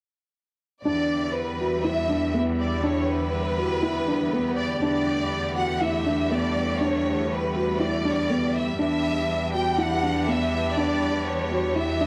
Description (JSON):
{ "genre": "electronica", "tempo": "121 BPM", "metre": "4/4", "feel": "straight", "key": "E minor", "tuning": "A4 = 440 Hz", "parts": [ { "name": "dark chamber string section", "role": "sustained chords", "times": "0.8-12.1 s", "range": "D3 to G4", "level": "-34 LUFS", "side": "equal", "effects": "none" }, { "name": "warm symphonic violin section", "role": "melody", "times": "0.9-12.1 s", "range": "B4 to G5", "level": "-30 LUFS", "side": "equal", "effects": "none" }, { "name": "felt-muted upright piano", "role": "riff", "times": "0.9-12.1 s", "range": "B3 to F#4", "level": "-28 LUFS", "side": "equal", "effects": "none" }, { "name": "bright studio cello section", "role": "bass", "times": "0.9-12.1 s", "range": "E2", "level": "-33 LUFS", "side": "equal", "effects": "none" } ], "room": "moderate concert hall reverb, RT60 1.8 s, small room ambience", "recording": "none", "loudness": "-25 LUFS", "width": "mono", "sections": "0.9-12.1 A section", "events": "none", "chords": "0.9 Em7; 4.8 Gadd9/E; 8.8 Em7" }